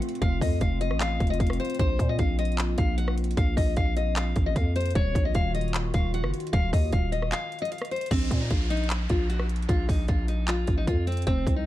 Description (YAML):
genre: hip hop, trap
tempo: 152 BPM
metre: 4/4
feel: half-time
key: unclear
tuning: A4 = 441 Hz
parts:
  - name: dark analog pad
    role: sustained chords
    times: 0.0-8.1 s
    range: Eb3 to Gb4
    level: -34 LUFS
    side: left 1 dB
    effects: lush chorus
  - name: trap drum kit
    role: drums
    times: 0.0-11.6 s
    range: crash cymbal, handclaps, hi-hat, kick drum, rim click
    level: -27 LUFS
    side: equal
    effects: none
  - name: picked steel-string acoustic guitar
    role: melody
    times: 0.2-11.6 s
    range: C4 to Gb5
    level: -31 LUFS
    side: left 3 dB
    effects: low-pass filter, ping-pong delay
  - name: growling 808-style bass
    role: bass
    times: 0.2-11.7 s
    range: Eb1 to Bb2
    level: -27 LUFS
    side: equal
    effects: none
  - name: downlifter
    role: sound effects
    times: 8.1-11.3 s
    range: none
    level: -40 LUFS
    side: right 1 dB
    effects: none
room: little or no reverb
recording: dark, warm production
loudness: -23 LUFS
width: side -14 dB against mid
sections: 0.0-8.1 A section; 8.1-11.7 B section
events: break 7.3-8.1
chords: 0.0 F; 1.8 Bbsus2; 5.0 Ebmadd9; 8.1 Bb5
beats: | 0.22 0.61 1.01 1.40 | 1.79 2.19 2.58 2.98 | 3.37 3.77 4.16 4.56 | 4.95 5.35 5.74 6.14 | 6.53 6.93 7.32 7.72 | 8.11 8.51 8.90 9.29 | 9.69 10.09 10.48 10.87 | 11.27